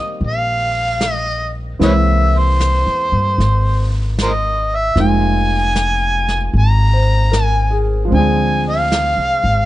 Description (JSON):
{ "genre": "jazz ballad", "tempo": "76 BPM", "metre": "4/4", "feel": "swing 68% on 8ths", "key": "unclear", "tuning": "A4 = 438 Hz", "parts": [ { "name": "overdriven harmonica", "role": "melody", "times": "0.0-9.7 s", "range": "Bb4 to Bb5", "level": "-18 LUFS", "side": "equal", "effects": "none" }, { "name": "clear grand piano", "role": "accompaniment", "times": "0.0-9.7 s", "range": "Eb3 to C5", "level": "-21 LUFS", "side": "right 2 dB", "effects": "none" }, { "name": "upright bass", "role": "bass", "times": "0.2-9.7 s", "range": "F1 to G2", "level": "-16 LUFS", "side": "equal", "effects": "none" }, { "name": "jazz brush drum kit", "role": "drums", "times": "0.2-9.7 s", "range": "brushed snare drum, hi-hat, snare drum", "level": "-27 LUFS", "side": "right 1 dB", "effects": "none" } ], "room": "light reverb", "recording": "dark, warm production, nothing above 10.3 kHz", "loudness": "-13 LUFS", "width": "side -15 dB against mid", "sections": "0.0-9.7 A section", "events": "none", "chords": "0.0 Eb6; 1.8 C7b13; 5.0 Fm7; 8.1 Dm7b5", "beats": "0.20 1.00 | 1.80 2.60 3.39 4.17 | 4.96 5.74 6.53 7.32 | 8.11 8.90" }